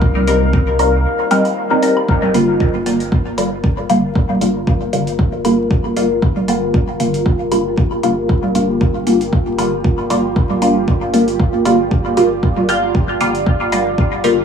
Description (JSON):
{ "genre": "dub techno", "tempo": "116 BPM", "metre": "4/4", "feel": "swing 55% on 16ths", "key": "G minor", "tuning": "A4 = 442 Hz", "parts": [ { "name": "deep dark ambient pad", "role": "sustained chords", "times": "0.0-14.4 s", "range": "Eb4 to F5", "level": "-21 LUFS", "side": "equal", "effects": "chorus, built-in reverb, sidechain pumping" }, { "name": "pure sine sub bass", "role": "bass", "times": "0.0-14.4 s", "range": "G1 to C2", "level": "-25 LUFS", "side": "right 1 dB", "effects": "sidechain pumping" }, { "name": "electronic kick drum", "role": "drums", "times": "0.0-14.1 s", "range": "none", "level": "-16 LUFS", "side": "equal", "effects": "overdrive" }, { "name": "congas and woodblock", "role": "percussion", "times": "0.2-13.8 s", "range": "none", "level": "-27 LUFS", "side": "right 2 dB", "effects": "sidechain pumping on perc, dub echo" }, { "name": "filtered dub chord stab", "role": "stabs", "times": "0.3-14.3 s", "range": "D3 to Bb4", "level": "-16 LUFS", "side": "equal", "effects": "phaser, cassette tape, sidechain pumping, dub echo" }, { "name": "electronic hi-hat", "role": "drums", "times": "0.3-14.4 s", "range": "none", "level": "-31 LUFS", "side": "right 2 dB", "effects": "overdrive, dub echo" } ], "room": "moderate plate reverb, RT60 1.6 s, digital ambience", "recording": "echo-heavy mix, vinyl crackle, small room ambience", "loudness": "-13 LUFS", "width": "side -7 dB against mid", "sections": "0.0-2.1 A section; 2.1-14.4 A section", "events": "filter sweep on synth stab 0.0-2.1", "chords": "0.0 Cm7; 2.1 Gm7", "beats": "| 0.02 0.53 1.05 1.57 | 2.08 2.60 3.12 3.64 | 4.15 4.67 5.19 5.71 | 6.22 6.74 7.26 7.78 | 8.29 8.81 9.33 9.84 | 10.36 10.88 11.40 11.91 | 12.43 12.95 13.46 13.98" }